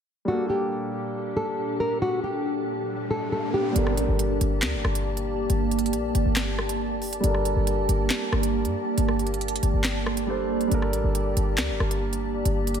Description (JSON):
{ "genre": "hip hop, drill", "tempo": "138 BPM", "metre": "4/4", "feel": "half-time", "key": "G minor", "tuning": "A4 = 438 Hz", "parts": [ { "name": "warm concert grand piano", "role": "accompaniment", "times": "0.2-12.8 s", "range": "G3 to C5", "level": "-30 LUFS", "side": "right 1 dB", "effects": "low-pass filter" }, { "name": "nylon-string guitar", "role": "melody", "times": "0.3-3.7 s", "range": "F#4 to Bb4", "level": "-28 LUFS", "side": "equal", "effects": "ping-pong delay" }, { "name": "glassy FM pad", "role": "sustained chords", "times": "0.6-12.8 s", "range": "Bb2 to A5", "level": "-28 LUFS", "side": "right 1 dB", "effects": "ensemble chorus, built-in reverb" }, { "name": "riser", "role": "sound effects", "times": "2.8-3.8 s", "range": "none", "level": "-33 LUFS", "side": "right 5 dB", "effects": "none" }, { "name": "short 808-style bass", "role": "bass", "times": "3.8-12.8 s", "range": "F#1 to G2", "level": "-26 LUFS", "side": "equal", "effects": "none" }, { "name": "drill drum kit", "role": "drums", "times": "3.8-12.8 s", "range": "handclaps, hi-hat, rim click, snare drum", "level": "-29 LUFS", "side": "right 1 dB", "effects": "none" } ], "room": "light reverb, digital ambience", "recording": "none", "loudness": "-23 LUFS", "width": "side -8 dB against mid", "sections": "0.3-3.8 A section; 3.8-12.8 B section", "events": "riser 2.8-3.8; filter sweep on grand piano 3.8-10.7", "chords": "0.3 Gmadd9" }